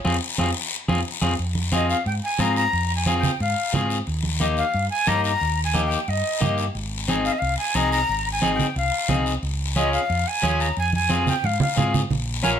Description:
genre	latin, cumbia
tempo	179 BPM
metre	4/4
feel	straight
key	F minor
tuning	A4 = 440 Hz
part	electric guitar at the edge of break-up	accompaniment	0.0-12.6 s	Bb3 to Bb4	-24 LUFS	left 2 dB	none
part	guiro	percussion	0.0-12.6 s	none	-30 LUFS	left 7 dB	none
part	hollow-body short-scale fingered electric bass	bass	0.1-12.6 s	Ab1 to Ab2	-26 LUFS	equal	none
part	congas	percussion	0.1-12.6 s	none	-26 LUFS	right 3 dB	none
part	breathy jazz flute	melody	1.7-12.5 s	Eb5 to Bb5	-24 LUFS	left 1 dB	none
room	moderate studio reverb, RT60 0.8 s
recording	none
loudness	-20 LUFS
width	side -8 dB against mid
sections	0.0-1.4 A section; 1.4-12.1 B section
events	band accent 0.1-1.4; drum fill 0.6-1.4, 11.4-12.1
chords	0.1 Fm; 4.1 Eb; 6.7 Ab; 9.4 Db; 10.8 Fm

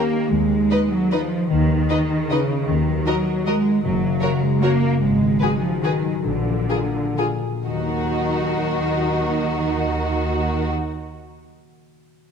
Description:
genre	classical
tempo	119-164 BPM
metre	3/4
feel	rubato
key	Eb minor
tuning	A4 = 440 Hz
part	rich studio violin section	second line	0.0-10.7 s	Gb4 to Cb5	-27 LUFS	left 2 dB	none
part	warm studio viola section	accompaniment	0.0-10.7 s	Eb4 to Gb4	-28 LUFS	right 2 dB	none
part	concert harp	arpeggios	0.0-11.6 s	Gb2 to Db5	-23 LUFS	left 5 dB	none
part	rich studio cello section	bass	0.0-10.7 s	Db3 to Bb3	-23 LUFS	right 3 dB	none
part	rich studio double bass section	bass	0.3-10.7 s	Gb1 to Eb2	-26 LUFS	right 3 dB	none
part	rich studio violin section	melody	0.7-10.7 s	Bb4 to Eb5	-33 LUFS	left 3 dB	none
room	moderate scoring stage reverb, RT60 1.8 s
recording	minimal, uncompressed stereo recording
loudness	-18 LUFS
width	side -6 dB against mid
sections	0.0-7.7 A section; 7.7-10.5 B section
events	slowing down 4.4-7.7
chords	0.3 Abm/Eb; 2.7 Ebm; 3.8 Gb; 5.0 Abm7; 6.2 Bb7; 7.7 Ebm

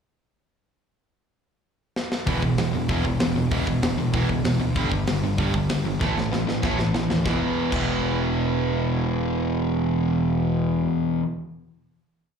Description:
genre	punk rock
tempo	193 BPM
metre	4/4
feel	straight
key	E minor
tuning	A4 = 442 Hz
part	tight metal drum kit	drums	2.0-7.8 s	crash cymbal, hi-hat, kick drum, snare drum	-28 LUFS	equal	none
part	crunchy overdriven guitar	riff	2.3-11.3 s	E2 to A3	-25 LUFS	right 9 dB	slapback echo
part	sludgy distorted guitar	riff	2.3-11.2 s	E2 to A3	-26 LUFS	left 10 dB	overdrive
part	fuzz picked electric bass	bass	2.3-10.9 s	E1 to D#2	-28 LUFS	equal	overdrive
room	light reverb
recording	live gig heard through the venue's PA, club reverb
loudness	-21 LUFS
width	side -6 dB against mid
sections	1.0-2.3 pickup bar; 2.3-7.3 verse; 7.3-9.7 final chord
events	drum fill 2.0-2.3, 6.0-7.3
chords	1.0 N.C.; 2.3 E5; 4.8 G5; 6.0 A5; 7.3 E5

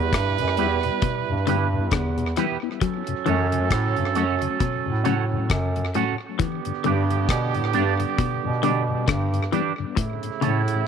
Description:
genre	roots reggae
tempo	67 BPM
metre	4/4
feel	swing 57% on 16ths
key	unclear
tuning	A4 = 438 Hz
part	warm horn section	second line	0.0-10.9 s	C#3 to B4	-27 LUFS	right 12 dB	tape echo
part	mellow bass clarinet	bass	0.0-10.9 s	E2 to B2	-24 LUFS	equal	none
part	deep reggae drum kit	drums	0.1-10.9 s	hi-hat, kick drum, rim click	-26 LUFS	left 2 dB	tape echo
part	mellow tonewheel organ	accompaniment	0.4-10.7 s	E2 to E4	-30 LUFS	left 9 dB	chorus vibrato, slow rotary speaker, tape echo
part	electric guitar with an envelope filter	accompaniment	0.6-10.6 s	B3 to D5	-29 LUFS	right 12 dB	lush chorus, tape echo
part	semi-hollow electric guitar	arpeggios	1.0-10.6 s	A2 to F#3	-28 LUFS	left 8 dB	none
room	light reverb, small room ambience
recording	1960s-style stereo with parts hard left and right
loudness	-21 LUFS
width	side -7 dB against mid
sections	0.0-10.9 A section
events	none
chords	0.0 Em; 2.8 F#m; 6.4 G; 10.0 A

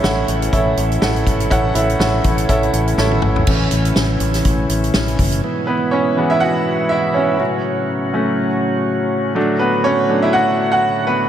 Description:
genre	piano-driven pop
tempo	122 BPM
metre	4/4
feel	swing 56% on 16ths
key	unclear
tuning	A4 = 440 Hz
part	bright upright piano	accompaniment	0.0-11.3 s	A2 to F#5	-18 LUFS	right 1 dB	none
part	bright tonewheel organ	sustained chords	0.0-11.3 s	G#2 to F#4	-20 LUFS	equal	overdrive, slow rotary speaker
part	fingered electric bass	bass	0.0-5.4 s	F#1 to A1	-19 LUFS	equal	none
part	natural country drum kit	drums	0.0-5.4 s	crash cymbal, hi-hat, kick drum, snare drum, toms	-20 LUFS	equal	none
room	wet cathedral reverb, RT60 6.8 s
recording	dreamy mix soaked in reverb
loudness	-14 LUFS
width	side -10 dB against mid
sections	0.0-3.5 A section; 3.5-5.4 B section; 5.4-11.3 C section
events	drum fill 3.0-3.5; upright piano solo 5.4-11.3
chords	0.0 A; 5.4 E; 7.4 F#m; 9.4 D

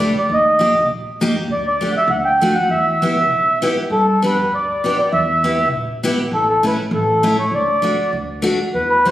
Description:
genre	alpine folk, alpine dance band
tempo	99 BPM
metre	2/4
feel	straight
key	unclear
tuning	A4 = 438 Hz
part	mellow accordion	melody	0.0-9.1 s	A4 to G5	-16 LUFS	equal	none
part	picked steel-string acoustic guitar	accompaniment	0.0-9.1 s	G3 to G4	-21 LUFS	left 1 dB	none
part	upright bass	bass	0.0-9.1 s	A1 to G2	-25 LUFS	right 1 dB	none
room	wet recital hall reverb, RT60 1.6 s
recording	recorded on a phone in the room, studio reverb, compression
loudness	-14 LUFS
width	side -13 dB against mid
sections	0.0-9.1 A section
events	none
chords	0.3 Eb; 1.5 Dsus4; 2.1 D; 2.7 Em; 3.9 G; 5.1 Em; 6.3 A; 7.5 D

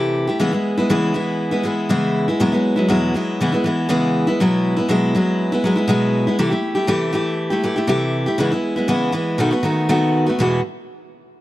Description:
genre	rock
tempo	120 BPM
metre	4/4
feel	straight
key	E major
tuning	A4 = 440 Hz
part	picked steel-string acoustic guitar	solo	0.0-10.6 s	E2 to G4	-16 LUFS	equal	none
room	studio reverb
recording	dry, close 1970s-style studio recording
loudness	-16 LUFS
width	side -16 dB against mid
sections	0.0-10.4 A section; 10.4-11.4 B section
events	none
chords	0.4 C#m7; 2.4 Eadd9; 3.4 C#m7; 4.4 Eadd9/B; 6.4 C6; 8.4 C#m7; 9.4 B7; 10.4 Eadd9

